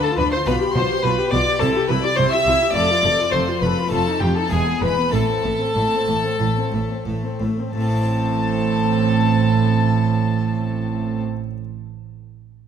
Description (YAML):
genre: classical, baroque-style concerto movement with solo episodes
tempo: 88-106 BPM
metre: 4/4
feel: straight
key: A minor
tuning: A4 = 443 Hz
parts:
  - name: dark violin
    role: melody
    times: 0.0-11.2 s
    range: G4 to A5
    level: -23 LUFS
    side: left 2 dB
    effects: none
  - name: rich chamber violin section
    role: melody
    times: 0.0-11.2 s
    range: G5 to E6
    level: -27 LUFS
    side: left 5 dB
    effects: none
  - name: warm chamber violin section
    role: second line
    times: 0.0-11.2 s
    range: G4 to E5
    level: -26 LUFS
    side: left 2 dB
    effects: none
  - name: dark chamber viola section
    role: accompaniment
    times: 0.0-11.2 s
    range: G#3 to A4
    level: -27 LUFS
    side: left 4 dB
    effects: none
  - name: harpsichord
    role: accompaniment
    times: 0.0-11.6 s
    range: E2 to C5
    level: -29 LUFS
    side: equal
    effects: none
  - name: warm chamber cello section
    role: bass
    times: 0.2-11.2 s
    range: E2 to D3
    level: -24 LUFS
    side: right 3 dB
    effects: none
  - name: warm studio double bass section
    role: bass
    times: 0.2-11.2 s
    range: E1 to D2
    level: -24 LUFS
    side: right 5 dB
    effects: none
room: light reverb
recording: none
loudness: -17 LUFS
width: side -8 dB against mid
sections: 0.0-7.7 A section; 7.7-10.5 B section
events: slowing down 1.6-7.7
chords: 0.5 G7/B; 1.6 C; 2.7 F; 3.9 F7; 4.5 E; 5.1 Am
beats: | 0.46 1.03 1.60 2.17 | 2.75 3.32 3.91 4.51 | 5.13 5.75 6.40 7.05 | 7.73 8.41 9.09 9.77